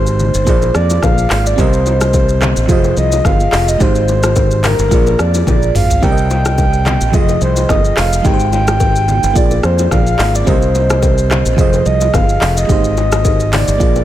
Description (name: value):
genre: afrobeats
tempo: 108 BPM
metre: 4/4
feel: swing 55% on 16ths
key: unclear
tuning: A4 = 439 Hz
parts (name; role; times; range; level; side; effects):
- breathy flute-like synth lead; melody; 0.0-14.0 s; Bb4 to G5; -17 LUFS; equal; chorus
- FM electric piano; accompaniment; 0.0-14.0 s; F3 to Eb5; -19 LUFS; right 5 dB; chorus
- modern bright fingered electric bass; bass; 0.0-14.0 s; F1 to F2; -15 LUFS; equal; none
- afro-pop drum kit; drums; 0.1-14.0 s; handclaps, hi-hat, kick drum, rim click, shaker, toms; -16 LUFS; equal; none
- congas and bongos; percussion; 0.2-14.0 s; none; -24 LUFS; left 6 dB; none
room: light reverb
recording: none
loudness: -10 LUFS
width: side -12 dB against mid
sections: 0.0-14.0 A section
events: drum fill 5.5-6.0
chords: 0.5 Bb7; 1.6 Cm7; 2.7 Fm7; 3.8 Abmaj7; 4.9 Bb7; 6.0 Cm7; 7.1 Fm7; 8.2 Abmaj7; 9.4 Bb7; 10.5 Cm7; 11.6 Fm7; 12.7 Abmaj7